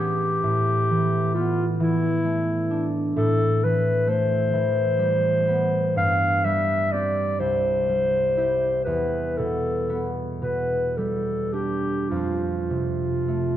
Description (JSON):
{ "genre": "classical, impressionist duo for clarinet and harp", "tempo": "34-45 BPM (dotted quarters)", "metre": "6/8", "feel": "rubato", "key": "unclear", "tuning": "A4 = 439 Hz", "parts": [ { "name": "mellow clarinet", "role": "melody", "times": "0.0-13.6 s", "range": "E4 to F5", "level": "-23 LUFS", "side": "left 1 dB", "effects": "none" }, { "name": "concert harp", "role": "accompaniment", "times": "0.0-13.6 s", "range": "C2 to G4", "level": "-24 LUFS", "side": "right 1 dB", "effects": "none" } ], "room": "wet recital hall reverb, RT60 1.8 s", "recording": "dark, warm production", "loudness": "-21 LUFS", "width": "side -12 dB against mid", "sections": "0.0-13.6 A section", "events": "none", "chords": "0.4 G69/A; 3.2 Am9; 6.0 Gsus24; 7.4 C; 8.9 Em7; 12.1 F" }